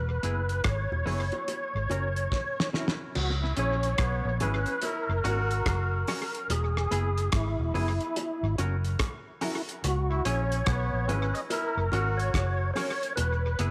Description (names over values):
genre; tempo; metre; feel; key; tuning
roots reggae; 72 BPM; 4/4; swing 62% on 16ths; unclear; A4 = 437 Hz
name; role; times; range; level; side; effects
tonewheel organ; melody; 0.0-13.7 s; E4 to D#5; -34 LUFS; equal; overdrive, chorus vibrato, slow rotary speaker, dub echo
vintage muted fingered electric bass; bass; 0.0-13.7 s; E1 to C#2; -31 LUFS; equal; transformer saturation
semi-hollow electric guitar; accompaniment; 0.2-13.7 s; B3 to A#4; -40 LUFS; equal; spring reverb, dub echo
cloth-damped thuddy drum kit; drums; 0.2-13.7 s; crash cymbal, hi-hat, kick drum, rim click, snare drum; -35 LUFS; equal; tape echo
bongos; percussion; 0.9-13.4 s; none; -43 LUFS; equal; none
brilliant trombone; second line; 3.4-12.7 s; B3 to F#4; -39 LUFS; equal; dub echo
room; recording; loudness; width
light reverb; none; -29 LUFS; mono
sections
0.0-3.2 A section; 3.2-13.7 B section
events
drum fill 2.3-3.2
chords
0.0 E; 1.5 F#; 3.2 C#m; 4.8 F#; 6.5 E; 8.2 F#; 9.8 C#m; 11.5 F#; 13.2 E